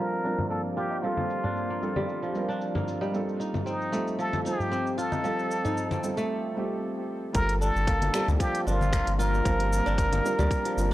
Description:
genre	organic downtempo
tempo	114 BPM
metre	4/4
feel	swing 54% on 16ths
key	G minor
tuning	A4 = 440 Hz
part	trumpet with plunger mute	melody	0.0-10.9 s	Eb4 to Bb4	-30 LUFS	equal	tape echo
part	felt-muted upright piano	accompaniment	0.0-10.9 s	G3 to C5	-34 LUFS	right 2 dB	sidechain pumping, analog delay
part	ethereal airy pad	sustained chords	0.0-10.9 s	F3 to Eb5	-39 LUFS	left 3 dB	ensemble chorus, built-in reverb, sidechain pumping
part	kora	arpeggios	0.0-10.9 s	F3 to F4	-32 LUFS	right 1 dB	analog delay
part	organic electronic drum kit	drums	0.1-10.9 s	cabasa, congas, finger snaps, hi-hat	-36 LUFS	left 2 dB	none
part	tabla	percussion	0.1-6.3 s	none	-38 LUFS	right 1 dB	none
part	warm sub bass	bass	7.3-10.9 s	G1 to D2	-26 LUFS	equal	sidechain pumping
part	electronic kick drum	drums	7.3-10.6 s	none	-28 LUFS	equal	none
room	small room reverb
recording	dry, gritty hardware recording, transformer saturation, low-pass filter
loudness	-25 LUFS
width	side -15 dB against mid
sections	0.0-7.3 A section; 7.3-10.9 B section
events	filter sweep 0.0-7.3; break 6.3-7.3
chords	0.0 Gm7; 3.1 F7; 7.3 Gm7

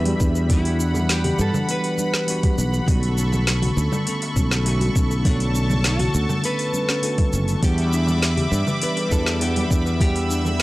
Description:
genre	sunset chillout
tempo	101 BPM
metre	4/4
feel	straight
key	E dorian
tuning	A4 = 441 Hz
part	bell-like tine electric piano	accompaniment	0.0-10.6 s	D3 to F#5	-27 LUFS	equal	auto-pan
part	lush unison pad	sustained chords	0.0-10.6 s	G3 to E6	-28 LUFS	equal	chorus
part	sustaining fretless electric bass	bass	0.0-10.6 s	F#1 to G2	-21 LUFS	equal	none
part	soft round pluck	arpeggios	0.1-10.4 s	C#4 to B4	-33 LUFS	left 2 dB	chorus, vintage 12-bit sampler grit, tape echo
part	smooth R&B drum kit	drums	0.1-10.6 s	congas, hi-hat, shaker, snare drum	-26 LUFS	left 1 dB	none
part	congas and bongos	percussion	0.1-10.6 s	none	-31 LUFS	right 2 dB	none
part	electronic kick drum	drums	0.2-10.1 s	none	-20 LUFS	equal	none
part	nylon-string guitar	melody	0.5-10.6 s	D4 to B4	-29 LUFS	equal	tape echo
room	little or no reverb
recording	dry, gritty hardware recording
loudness	-18 LUFS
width	side -18 dB against mid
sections	0.0-10.6 A section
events	none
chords	0.0 Em7; 2.9 Bm9; 7.6 Em7

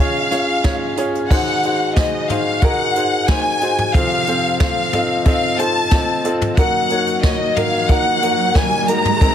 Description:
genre	piano-driven pop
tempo	91 BPM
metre	4/4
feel	straight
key	unclear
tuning	A4 = 440 Hz
part	warm studio violin section	melody	0.0-9.3 s	Eb5 to Bb5	-18 LUFS	left 2 dB	none
part	bright upright piano	accompaniment	0.0-9.3 s	Db2 to Eb5	-20 LUFS	equal	none
part	jazz brush drum kit	drums	0.3-9.3 s	crash cymbal, hi-hat, kick drum, snare drum, toms	-18 LUFS	equal	none
part	riser	sound effects	7.5-9.3 s	none	-25 LUFS	right 4 dB	none
room	light reverb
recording	heavily compressed radio sound, multiband compression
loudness	-14 LUFS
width	side -9 dB against mid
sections	0.0-1.3 A section; 1.3-9.3 B section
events	riser 7.5-9.3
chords	0.0 Db; 1.3 Ab7; 3.9 F; 6.6 Ebm/Gb

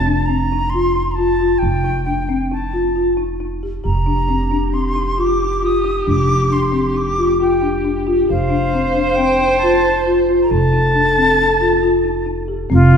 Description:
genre	contemporary instrumental, chamber music in an uneven meter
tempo	135 BPM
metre	5/4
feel	straight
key	unclear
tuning	A4 = 441 Hz
part	jazz flute	melody	0.0-13.0 s	F4 to Eb6	-20 LUFS	equal	none
part	upright bass	bass	0.0-13.0 s	F1	-20 LUFS	right 2 dB	none
part	folk marimba with soft mallets	arpeggios	0.1-13.0 s	C4 to G4	-18 LUFS	left 3 dB	none
part	dark viola	second line	3.8-12.5 s	G4 to C5	-20 LUFS	right 1 dB	none
room	moderate recital hall reverb, RT60 1.8 s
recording	heard from further back in the room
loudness	-14 LUFS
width	side -7 dB against mid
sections	0.0-12.7 A section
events	none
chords	0.0 C5/F

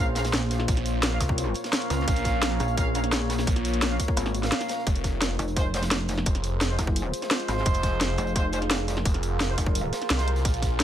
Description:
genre	dark technical drum and bass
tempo	172 BPM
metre	4/4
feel	straight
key	F minor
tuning	A4 = 441 Hz
part	deep dark ambient pad	sustained chords	0.0-10.8 s	Bb3 to Db5	-32 LUFS	equal	chorus, built-in reverb, sidechain pumping
part	dark brass ensemble	stabs	0.0-10.3 s	Ab3 to F5	-33 LUFS	right 2 dB	digital delay
part	pulsing pluck wobble bass	bass	0.0-9.9 s	F1 to Db2	-27 LUFS	equal	chorus
part	crunchy breakbeat drum kit	drums	0.2-10.8 s	hi-hat, snare drum	-38 LUFS	equal	high-pass filter on hats, high-pass filter on snare, high-pass filter on room
part	drum and bass drum kit	drums	0.2-10.8 s	hi-hat, snare drum	-28 LUFS	equal	none
part	phased detuned saw bass	bass	0.7-10.8 s	F1 to C2	-27 LUFS	equal	phaser, overdrive
part	electronic kick drum	drums	0.7-10.7 s	none	-26 LUFS	equal	overdrive
room	light reverb, studio reverb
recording	none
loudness	-23 LUFS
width	side -10 dB against mid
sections	0.0-10.8 A section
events	none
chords	0.0 Bbm; 4.9 Fm

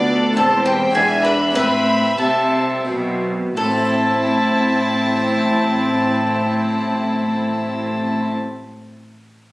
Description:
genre	classical, baroque-style concerto movement with solo episodes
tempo	81-108 BPM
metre	3/4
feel	straight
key	A minor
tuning	A4 = 440 Hz
part	bowl-back mandolin	melody	0.0-8.3 s	D4 to B4	-22 LUFS	equal	none
part	rich chamber violin section	melody	0.0-8.3 s	D5 to B5	-22 LUFS	left 1 dB	none
part	warm chamber violin section	second line	0.0-8.3 s	E4 to E5	-24 LUFS	equal	none
part	harpsichord	accompaniment	0.0-8.6 s	D2 to C5	-28 LUFS	equal	none
part	warm chamber viola section	accompaniment	0.0-8.3 s	B3 to D4	-22 LUFS	equal	none
part	rich studio double bass section	bass	0.0-8.3 s	E1 to D2	-31 LUFS	equal	none
part	warm chamber cello section	bass	0.0-8.3 s	D2 to C3	-22 LUFS	equal	none
room	moderate recital hall reverb, RT60 1.3 s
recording	recorded on a phone in the room, club reverb, compression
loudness	-15 LUFS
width	side -20 dB against mid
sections	0.0-3.6 A section; 3.6-8.0 B section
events	slowing down 0.0-3.6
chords	0.4 Am/E; 0.9 E7; 1.6 Am

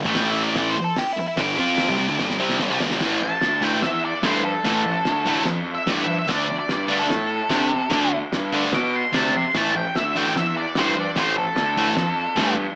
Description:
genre	garage rock duo or trio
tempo	147 BPM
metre	4/4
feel	straight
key	A minor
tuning	A4 = 439 Hz
part	thick fuzz guitar	riff	0.0-12.5 s	G2 to F4	-22 LUFS	equal	distortion, cassette tape
part	fuzz picked electric bass	bass	0.0-12.7 s	G1 to C3	-26 LUFS	equal	overdrive
part	cloth-damped thuddy drum kit	drums	0.1-12.5 s	crash cymbal, hi-hat, kick drum, snare drum	-27 LUFS	equal	none
part	octave-fuzz lead guitar	melody	0.2-12.5 s	E4 to D6	-24 LUFS	equal	distortion, cassette tape
room	light reverb, studio ambience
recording	home recording on cassette, small speaker sound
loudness	-19 LUFS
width	side -27 dB against mid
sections	0.0-3.0 A section; 3.0-12.8 B section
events	drum fill 2.2-3.0; lead electric guitar solo 3.0-12.8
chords	0.0 A5; 0.8 G5; 3.0 A5; 6.3 D5; 9.5 A5

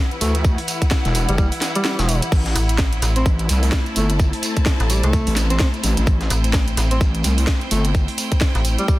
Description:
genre	bass house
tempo	128 BPM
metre	4/4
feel	swing 58% on 16ths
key	A dorian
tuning	A4 = 440 Hz
part	sweeping resonant pad	sustained chords	0.0-9.0 s	E3 to B4	-30 LUFS	left 1 dB	chorus, sidechain pumping
part	clear studio string section	texture	0.0-9.0 s	E4 to A5	-28 LUFS	equal	sidechain pumping
part	garage drum kit	drums	0.1-8.9 s	crash cymbal, hi-hat, snare drum	-25 LUFS	equal	overdrive, studio reverb
part	shekere	percussion	0.1-9.0 s	none	-33 LUFS	right 4 dB	none
part	mellow alto saxophone	melody	0.2-9.0 s	G3 to C4	-26 LUFS	equal	dub echo
part	wobble bass	bass	0.2-8.1 s	E1 to D2	-19 LUFS	equal	chorus, overdrive, sidechain pumping
part	breakbeat sampler-style drum kit	drums	0.2-9.0 s	hi-hat, snare drum, tambourine	-32 LUFS	equal	none
part	electronic kick drum	drums	0.4-9.0 s	none	-18 LUFS	equal	studio reverb
part	metallic FM bass	bass	2.6-8.8 s	A1 to C2	-19 LUFS	equal	tube saturation, sidechain pumping
room	little or no reverb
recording	dense, heavily limited modern master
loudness	-16 LUFS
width	side -17 dB against mid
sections	0.0-9.0 A section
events	kick drops out 1.9-2.3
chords	0.0 Em; 2.3 Am

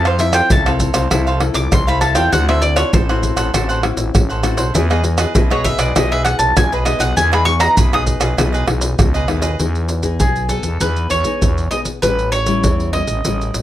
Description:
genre	samba and choro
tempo	99 BPM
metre	4/4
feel	straight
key	E major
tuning	A4 = 440 Hz
part	bowl-back mandolin	melody	0.0-13.6 s	G#4 to D#6	-18 LUFS	right 1 dB	none
part	cavaquinho	accompaniment	0.0-9.6 s	D4 to F#5	-23 LUFS	right 3 dB	none
part	nylon-string guitar	accompaniment	0.0-13.6 s	A2 to A4	-23 LUFS	left 6 dB	none
part	growling FM bass	bass	0.0-13.6 s	A1 to F2	-19 LUFS	equal	none
part	maracas, pandeiro, tamborim and surdo	percussion	0.1-13.6 s	none	-18 LUFS	equal	none
room	light reverb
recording	none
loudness	-13 LUFS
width	side -13 dB against mid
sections	0.0-9.6 A section; 9.6-13.6 B section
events	mandolin solo 0.0-9.6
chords	0.0 Fmaj7; 2.3 D9; 4.7 Emaj7; 12.0 A7

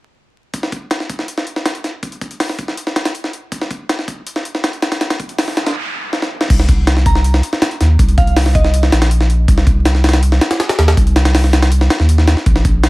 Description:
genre	drum and bass, jungle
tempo	161 BPM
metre	4/4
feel	straight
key	C minor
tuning	A4 = 440 Hz
part	jungle sampler-style drum kit	drums	0.5-12.9 s	crash cymbal, hi-hat, kick drum, snare drum	-15 LUFS	equal	high-pass filter on hats, small room ambience, high-pass filter on kick, high-pass filter on snare, high-pass filter on cymbals
part	noise sweep	sound effects	5.3-6.5 s	none	-27 LUFS	right 2 dB	none
part	soft dub sub bass	bass	6.5-12.9 s	Bb1 to Eb2	-12 LUFS	equal	none
part	glassy synth bell	melody	7.1-8.7 s	Eb5 to Bb5	-23 LUFS	right 2 dB	chorus, dub echo
room	little or no reverb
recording	vinyl crackle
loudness	-12 LUFS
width	side -20 dB against mid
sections	0.5-6.5 A section; 6.5-12.9 B section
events	noise sweep 5.3-6.5; stop 5.8-6.5; drum fill 6.1-6.5; drop 6.5-12.9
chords	none

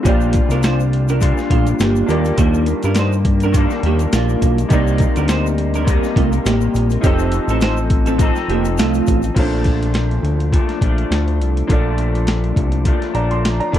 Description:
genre	indie pop, bedroom pop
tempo	103 BPM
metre	4/4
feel	swing 55% on 16ths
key	Bb major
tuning	A4 = 440 Hz
part	clear upright piano	accompaniment	0.0-13.8 s	C4 to C6	-26 LUFS	right 3 dB	cassette tape
part	electric guitar through a small old amp	accompaniment	0.0-13.8 s	Bb2 to A4	-22 LUFS	left 4 dB	analog chorus, vibrato effect
part	electric guitar through a small old amp	second line	0.1-9.2 s	A3 to C5	-22 LUFS	right 5 dB	analog chorus, tape echo
part	fat analog bass	bass	0.1-13.8 s	F1 to G2	-18 LUFS	equal	none
part	boom bap sampler-style drum kit	drums	0.1-13.8 s	crash cymbal, hi-hat, kick drum, snare drum	-18 LUFS	equal	none
part	egg shaker	percussion	0.1-9.4 s	none	-38 LUFS	left 23 dB	none
room	little or no reverb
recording	dry, close 1970s-style studio recording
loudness	-14 LUFS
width	side -11 dB against mid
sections	0.0-9.4 A section; 9.4-13.8 B section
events	none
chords	0.1 Bb6; 2.1 Ebmaj7; 4.7 Cm7; 7.0 F7; 9.4 Bbmaj7

